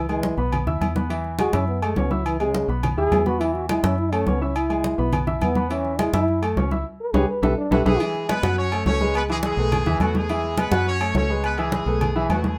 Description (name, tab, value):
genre	latin, salsa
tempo	209 BPM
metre	4/4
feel	straight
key	E major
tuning	A4 = 439 Hz
part	dark trombone	melody	0.0-8.0 s	C#3 to B4	-27 LUFS	equal	none
part	warm grand piano	accompaniment	0.0-12.5 s	E3 to E6	-28 LUFS	equal	none
part	deep dub fingered electric bass	bass	0.0-12.6 s	B1 to F#2	-28 LUFS	equal	none
part	agogo bells and timbales	percussion	0.1-12.4 s	none	-32 LUFS	equal	none
part	congas	percussion	0.1-12.6 s	none	-29 LUFS	equal	none
part	bright horn section	melody	7.7-12.6 s	F#3 to C#5	-29 LUFS	equal	none
room	moderate studio ambience, RT60 0.5 s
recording	none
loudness	-22 LUFS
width	mono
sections	0.0-8.0 A section; 8.0-12.6 B section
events	trombone solo 0.0-8.0; band accent 6.9-8.0; drum fill 7.6-8.0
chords	0.0 C#m7; 0.5 Bsus4; 1.1 E; 1.7 F#m7; 2.3 C#m7; 2.8 Bsus4; 3.4 E; 4.0 F#m7; 4.6 C#m7; 5.1 Bsus4; 5.7 E; 6.3 F#m7; 6.9 C#5; 7.4 B7sus4; 8.0 E; 8.6 F#m; 9.1 C#m7; 9.7 B7sus4; 10.3 E; 10.9 F#m; 11.4 C#m7; 12.0 B7sus4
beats	0.23 0.52 0.81 | 1.10 1.39 1.68 1.97 | 2.25 2.54 2.83 3.12 | 3.40 3.69 3.98 4.27 | 4.55 4.84 5.13 5.42 | 5.70 5.99 6.28 6.57 | 6.85 7.14 7.43 7.71 | 8.00 8.29 8.57 8.86 | 9.15 9.43 9.72 10.01 | 10.29 10.58 10.87 11.15 | 11.44 11.72 12.01 12.30 | 12.58